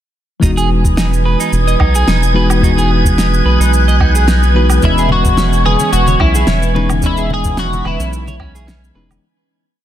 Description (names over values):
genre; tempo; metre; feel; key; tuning
sunset chillout; 109 BPM; 4/4; swing 54% on 16ths; E major; A4 = 439 Hz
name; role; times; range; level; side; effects
bell-like tine electric piano; accompaniment; 0.4-9.3 s; E3 to D#5; -18 LUFS; moving between left 5 dB and right 6 dB; auto-pan, low-pass filter, digital delay
airy breathy pad; sustained chords; 0.7-9.2 s; B4 to F#6; -21 LUFS; right 1 dB; chorus, phaser
electric guitar at the edge of break-up; arpeggios; 0.4-9.1 s; C#4 to D#5; -22 LUFS; right 4 dB; spring reverb, digital delay
round analog bass; bass; 0.4-9.2 s; E1 to B1; -14 LUFS; equal; none
electronic kick drum; drums; 0.4-8.5 s; none; -15 LUFS; equal; overdrive, studio reverb
electronic shaker, snare drum and woodblock; drums; 0.4-9.2 s; none; -20 LUFS; right 1 dB; overdrive, studio reverb
wind-like tuned noise texture; texture; 1.1-9.2 s; G#6; -25 LUFS; right 1 dB; built-in reverb
semi-hollow electric guitar; melody; 4.8-8.9 s; E4 to G#4; -17 LUFS; left 2 dB; analog chorus, digital delay
congas; percussion; 4.8-9.2 s; none; -23 LUFS; left 4 dB; none
room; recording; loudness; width
light reverb; dense, heavily limited modern master; -10 LUFS; side -11 dB against mid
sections
0.4-9.2 groove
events
filter sweep on tine electric piano 0.4-9.2; fade-out 6.3-9.2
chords
0.4 Emaj7; 4.8 C#m7/E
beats
| 0.42 0.97 1.52 2.07 | 2.62 3.17 3.73 4.28 | 4.83 5.38 5.93 6.48 | 7.03 7.58 8.13 8.68